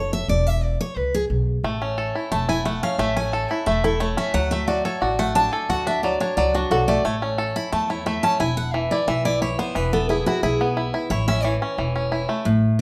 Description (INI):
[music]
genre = bluegrass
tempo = 178 BPM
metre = 4/4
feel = straight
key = A major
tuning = A4 = 440 Hz
[part]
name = picked steel-string acoustic guitar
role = accompaniment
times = 0.0-12.8 s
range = A2 to B5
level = -25 LUFS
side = equal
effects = none
[part]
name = upright bass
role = bass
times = 0.0-12.7 s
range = E1 to E2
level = -29 LUFS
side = equal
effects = none
[part]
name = bluegrass banjo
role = arpeggios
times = 1.6-12.5 s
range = E3 to A4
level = -26 LUFS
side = equal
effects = none
[sound]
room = moderate large studio reverb, RT60 0.9 s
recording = none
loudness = -22 LUFS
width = mono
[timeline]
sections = 0.0-12.5 A section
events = steel-string acoustic guitar solo 0.0-12.5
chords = 0.3 E5; 1.6 A; 4.3 D; 7.0 A; 8.4 E; 11.1 A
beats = | 0.29 0.63 0.97 1.30 | 1.64 1.98 2.31 2.65 | 2.99 3.33 3.67 4.00 | 4.34 4.68 5.02 5.36 | 5.69 6.03 6.37 6.71 | 7.05 7.39 7.72 8.06 | 8.40 8.74 9.08 9.41 | 9.75 10.09 10.43 10.77 | 11.11 11.44 11.78 12.12 | 12.46 12.79